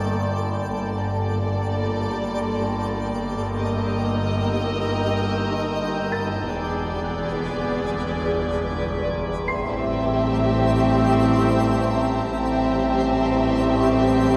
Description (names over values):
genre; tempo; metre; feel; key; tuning
cinematic, suspense film score; free time; none; none; A minor from 9.5 s; A4 = 440 Hz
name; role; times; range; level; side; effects
warm studio violin section; melody; 0.0-14.4 s; D5 to E5; -32 LUFS; equal; none
warm symphonic violin section; second line; 0.0-14.4 s; G4 to Bb4; -32 LUFS; equal; none
warm chamber viola section; accompaniment; 0.0-14.4 s; Bb3 to C4; -29 LUFS; equal; none
twinkling granular texture; sustained chords; 0.0-14.4 s; Eb4 to A5; -33 LUFS; equal; built-in reverb
dark chamber double bass section; bass; 0.0-14.4 s; E1 to A1; -31 LUFS; equal; none
rich chamber cello section; bass; 0.0-14.4 s; E2 to A2; -33 LUFS; equal; none
overtone-sweeping drone; drone; 0.0-14.4 s; G1 to A1; -33 LUFS; equal; chorus, built-in reverb
felt-muted upright piano; texture; 0.0-14.4 s; C6 to C7; -36 LUFS; equal; none
rich chamber violin section; texture; 3.6-14.4 s; A5 to G6; -40 LUFS; equal; none
mellow French horn section; sustained chords; 9.5-14.4 s; C4 to E4; -32 LUFS; equal; none
warm trombone section; sustained chords; 9.5-14.4 s; E3 to G3; -31 LUFS; equal; none
room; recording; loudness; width
wet scoring stage reverb, RT60 1.6 s; none; -23 LUFS; mono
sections
0.0-9.5 A section; 9.5-14.4 B section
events
none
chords
0.0 Gmadd9; 3.6 Eb/G; 6.5 E7; 9.5 Am7